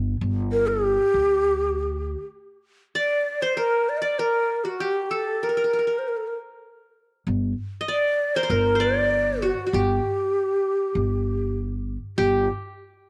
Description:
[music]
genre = arabic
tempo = 98 BPM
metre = 4/4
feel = straight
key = G maqam nahawand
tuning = A4 = 440 Hz
[part]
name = upright bass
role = bass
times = 0.0-2.1, 7.3-12.5 s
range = G1 to D2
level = -29 LUFS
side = equal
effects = none
[part]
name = breathy mellow ney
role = melody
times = 0.5-12.5 s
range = F#4 to Eb5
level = -25 LUFS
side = equal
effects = none
[part]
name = qanun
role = second line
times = 3.0-12.5 s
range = F#4 to Eb5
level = -30 LUFS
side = equal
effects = none
[sound]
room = wet spring reverb, RT60 1.6 s, studio ambience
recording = none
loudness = -24 LUFS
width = mono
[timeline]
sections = 0.0-2.4 A section; 2.4-12.2 B section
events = none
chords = none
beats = 0.53 1.14 1.75 | 2.36 2.97 3.58 4.20 | 4.81 5.42 6.04 6.65 | 7.27 7.88 8.49 9.11 | 9.72 10.34 10.95 11.57 | 12.18

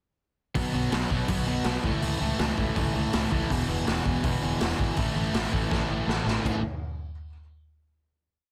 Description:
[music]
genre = punk rock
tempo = 163 BPM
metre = 4/4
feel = straight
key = A major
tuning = A4 = 440 Hz
[part]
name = cranked stack guitar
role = riff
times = 0.5-6.6 s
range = E2 to B3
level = -33 LUFS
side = equal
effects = overdrive
[part]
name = raw garage drum kit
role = drums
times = 0.5-6.5 s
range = crash cymbal, hi-hat, kick drum, snare drum, toms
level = -31 LUFS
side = equal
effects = none
[part]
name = sludgy distorted guitar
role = riff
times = 0.6-6.6 s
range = E2 to B3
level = -34 LUFS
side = equal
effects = overdrive
[part]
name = modern bright picked electric bass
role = bass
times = 0.6-6.6 s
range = E1 to C#2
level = -34 LUFS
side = equal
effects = none
[sound]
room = little or no reverb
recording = dense, heavily limited modern master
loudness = -27 LUFS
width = mono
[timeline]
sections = 0.6-6.5 verse; 6.5-7.9 final chord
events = drum fill 5.7-6.5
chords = 0.6 B5; 1.8 A/C#; 3.5 E5; 5.0 A5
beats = | 0.55 0.92 1.29 1.66 | 2.02 2.39 2.76 3.13 | 3.50 3.87 4.24 4.61 | 4.98 5.35 5.71 6.08 | 6.45

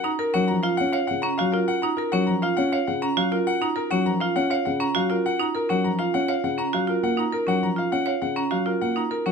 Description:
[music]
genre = classical, minimalist pattern music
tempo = 101 BPM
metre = 3/4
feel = straight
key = F# major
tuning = A4 = 441 Hz
[part]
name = bright concert grand piano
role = melody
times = 0.0-9.3 s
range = A#4 to A#5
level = -26 LUFS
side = left 6 dB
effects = none
[part]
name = marimba with hard mallets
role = arpeggios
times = 0.0-9.3 s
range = C#4 to C#5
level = -25 LUFS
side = right 6 dB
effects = none
[part]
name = dark concert grand piano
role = accompaniment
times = 0.3-9.3 s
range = C#3 to C#4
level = -26 LUFS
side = left 3 dB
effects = none
[sound]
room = light reverb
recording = close, detailed microphones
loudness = -21 LUFS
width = side -6 dB against mid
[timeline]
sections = 0.0-9.3 A section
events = none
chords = 0.0 F#maj7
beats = 0.49 1.09 | 1.68 2.28 2.87 | 3.46 4.06 4.65 | 5.25 5.84 6.43 | 7.03 7.62 8.22 | 8.81

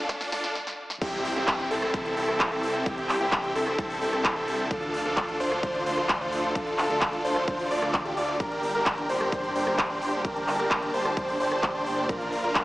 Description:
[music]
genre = EDM, festival progressive house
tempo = 130 BPM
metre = 4/4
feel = straight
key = unclear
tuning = A4 = 440 Hz
[part]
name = dark studio string section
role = sustained chords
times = 0.0-12.6 s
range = C3 to A5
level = -34 LUFS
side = equal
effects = sidechain pumping
[part]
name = big supersaw lead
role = riff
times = 0.0-12.6 s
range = C4 to D5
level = -29 LUFS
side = equal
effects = sidechain pumping, dub echo
[part]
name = riser and downlifter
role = sound effects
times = 0.0-4.7 s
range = none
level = -38 LUFS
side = equal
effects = none
[part]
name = big-room dance drum kit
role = drums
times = 0.1-12.6 s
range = crash cymbal, handclaps, hi-hat, rim click, snare drum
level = -29 LUFS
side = equal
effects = overdrive
[part]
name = electronic kick drum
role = drums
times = 0.1-12.6 s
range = none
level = -34 LUFS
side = equal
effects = none
[part]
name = dark baby grand piano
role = arpeggios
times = 1.0-12.6 s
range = G4 to D5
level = -31 LUFS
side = equal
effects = sidechain pumping, dub echo
[part]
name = wide detuned saw bass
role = bass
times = 1.0-12.6 s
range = G1 to D2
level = -37 LUFS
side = equal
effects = chorus, sidechain pumping
[sound]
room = light reverb, digital ambience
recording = high-pass filter, small speaker sound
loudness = -24 LUFS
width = side -18 dB against mid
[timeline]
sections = 0.0-1.0 A section; 1.0-12.6 B section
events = build-up 0.0-1.0; drum fill 0.0-0.6, 0.6-1.0; riser 0.0-0.6; stop 0.6-1.0; drop 1.0-12.6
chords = 0.0 Dm; 1.0 C; 4.7 Dm; 8.4 Gm; 12.1 Bb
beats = 0.09 0.55 | 1.02 1.48 1.94 2.40 | 2.86 3.32 3.79 4.25 | 4.71 5.17 5.63 6.09 | 6.55 7.02 7.48 7.94 | 8.40 8.86 9.32 9.79 | 10.25 10.71 11.17 11.63 | 12.09 12.55

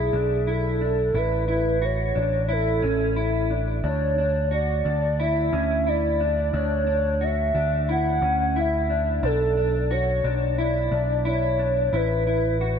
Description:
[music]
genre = dream pop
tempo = 89 BPM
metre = 4/4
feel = straight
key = unclear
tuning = A4 = 440 Hz
[part]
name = hollow clarinet-like synth lead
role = melody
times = 0.0-12.8 s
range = G#4 to F#5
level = -25 LUFS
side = right 1 dB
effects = chorus, ping-pong delay
[part]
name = mellow electric guitar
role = arpeggios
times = 0.0-12.8 s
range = C#4 to F#4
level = -27 LUFS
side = left 3 dB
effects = analog chorus, ping-pong delay
[part]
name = picked electric bass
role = bass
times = 0.0-12.8 s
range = A1 to D2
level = -25 LUFS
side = equal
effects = none
[sound]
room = moderate lush hall reverb, RT60 2.1 s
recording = dark, warm production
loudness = -21 LUFS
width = side -7 dB against mid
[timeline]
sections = 0.0-12.8 A section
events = none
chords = 0.0 Bm7; 1.1 A69; 3.8 Dmaj9; 9.2 Bm7; 11.9 Asus2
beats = 0.47 | 1.15 1.82 2.50 3.17 | 3.84 4.52 5.19 5.87 | 6.54 7.21 7.89 8.56 | 9.24 9.91 10.59 11.26 | 11.93 12.61

